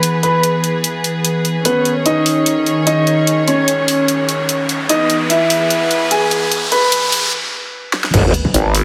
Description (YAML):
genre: heavy wobble dubstep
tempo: 148 BPM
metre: 4/4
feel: swing 53% on 16ths, half-time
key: unclear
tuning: A4 = 440 Hz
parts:
  - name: clear concert grand piano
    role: melody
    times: 0.0-8.1 s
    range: B3 to B5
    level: -18 LUFS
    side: equal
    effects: low-pass filter, dub echo
  - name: clear studio string section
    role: sustained chords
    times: 0.0-8.8 s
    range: D#3 to C#5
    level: -21 LUFS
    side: equal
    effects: sidechain pumping, low-pass filter
  - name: dubstep drum kit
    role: drums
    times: 0.0-8.8 s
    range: crash cymbal, hi-hat, snare drum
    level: -20 LUFS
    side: equal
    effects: none
  - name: riser and sub drop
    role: sound effects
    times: 3.6-8.8 s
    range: none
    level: -23 LUFS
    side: equal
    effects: none
  - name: growl bass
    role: bass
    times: 8.1-8.3 s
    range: G#1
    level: -15 LUFS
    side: equal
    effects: chorus, overdrive
  - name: electronic kick drum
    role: drums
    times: 8.1-8.5 s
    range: none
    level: -21 LUFS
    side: equal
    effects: distortion
  - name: vowel-sweep wobble bass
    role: bass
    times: 8.5-8.8 s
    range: G#1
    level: -16 LUFS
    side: equal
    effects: chorus, overdrive
room: moderate lush hall reverb, RT60 1.8 s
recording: high-pass filter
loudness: -15 LUFS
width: mono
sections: 0.0-8.1 A section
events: build-up 0.0-8.1; filter sweep 0.0-8.1; riser 3.6-7.3; break 7.3-8.1; drum fill 7.9; impact 8.1-8.8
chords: 0.0 E; 1.7 C#sus2; 4.9 E; 8.1 G#m